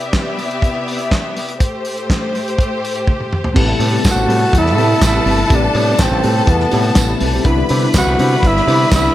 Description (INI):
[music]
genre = disco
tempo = 123 BPM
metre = 4/4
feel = straight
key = A minor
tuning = A4 = 440 Hz
[part]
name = rich symphonic string section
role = second line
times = 0.0-9.1 s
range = A3 to B5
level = -21 LUFS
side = left 2 dB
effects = none
[part]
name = rich studio string section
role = sustained chords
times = 0.0-9.1 s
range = A2 to A5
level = -26 LUFS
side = left 1 dB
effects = low-pass filter
[part]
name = warm soul drum kit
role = drums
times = 0.0-9.0 s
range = crash cymbal, handclaps, hi-hat, kick drum, snare drum, toms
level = -17 LUFS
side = equal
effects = gated reverb
[part]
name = mellow electric guitar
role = accompaniment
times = 3.5-9.1 s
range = C4 to C5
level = -23 LUFS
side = right 2 dB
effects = harmonic tremolo
[part]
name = tine electric piano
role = accompaniment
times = 3.6-9.1 s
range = B2 to E4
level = -21 LUFS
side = left 6 dB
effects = medium stereo tremolo
[part]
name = growling fingered electric bass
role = bass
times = 3.6-9.1 s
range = G1 to C3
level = -17 LUFS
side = equal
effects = overdrive
[part]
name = tambourine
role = percussion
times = 4.0-9.0 s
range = none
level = -27 LUFS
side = right 7 dB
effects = none
[part]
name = growling tenor saxophone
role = melody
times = 4.1-9.1 s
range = B3 to F#4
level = -16 LUFS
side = right 2 dB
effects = none
[sound]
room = light reverb, small room ambience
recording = none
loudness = -12 LUFS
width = side -13 dB against mid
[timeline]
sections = 0.0-3.6 A section; 3.6-9.1 B section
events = filter sweep on string section 0.0-3.6; drum fill 3.1-3.6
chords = 0.0 Cmaj9; 1.6 Am7; 3.6 Am9; 7.4 Cmaj9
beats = 0.13 0.62 1.11 | 1.60 2.09 2.58 3.07 | 3.56 4.04 4.53 5.01 | 5.50 5.99 6.47 6.96 | 7.45 7.94 8.42 8.91